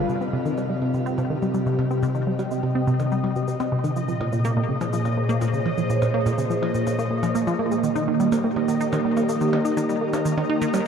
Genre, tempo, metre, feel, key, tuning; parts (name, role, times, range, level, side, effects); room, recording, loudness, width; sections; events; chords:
ambient, sequencer-driven space music; 124 BPM; 4/4; straight; A4 = 436 Hz
phased analog pad; sustained chords; 0.0-10.9 s; Bb2 to Bb5; -23 LUFS; equal; phaser, chorus, shimmer reverb
bubbling stepped-filter texture; texture; 0.0-10.9 s; Eb5 to F5; -33 LUFS; left 1 dB; chorus, built-in reverb, shimmer reverb
tight sequenced synth; riff; 0.1-10.8 s; Bb2 to Eb4; -25 LUFS; equal; chorus, shimmer reverb, ping-pong delay
cabasa and percussion blips; percussion; 0.1-10.8 s; -36 LUFS; right 1 dB; ping-pong delay
wet huge ambient reverb, RT60 7.7 s; dark, warm production; -21 LUFS; side -7 dB against mid
0.1-10.9 A section
fade-in on drum 0.1-10.9
0.1 Cm; 4.0 Bbm7; 7.8 Eb